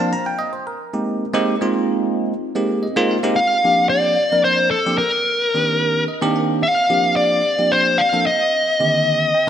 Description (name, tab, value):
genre	jazz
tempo	74 BPM (dotted quarters)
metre	6/8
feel	straight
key	Bb major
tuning	A4 = 444 Hz
part	bell-like tine electric piano	accompaniment	0.0-9.5 s	D3 to Bb5	-20 LUFS	right 2 dB	phaser
part	dark smooth lead guitar	melody	3.4-9.5 s	A4 to F5	-15 LUFS	left 1 dB	overdrive
room	wet lush hall reverb, RT60 1.9 s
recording	bright 1980s-style digital production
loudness	-15 LUFS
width	side -9 dB against mid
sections	0.0-3.4 A section; 3.4-9.5 B section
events	tine electric piano fill 2.6-3.4, 5.8-6.6, 9.1-9.5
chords	0.1 Abmaj9; 3.4 Bb69; 5.0 Cm9; 6.6 Bb69; 8.3 Cm9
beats	| 0.12 0.93 | 1.75 2.56 | 3.37 4.18 | 5.00 5.81 | 6.62 7.44 | 8.25 9.07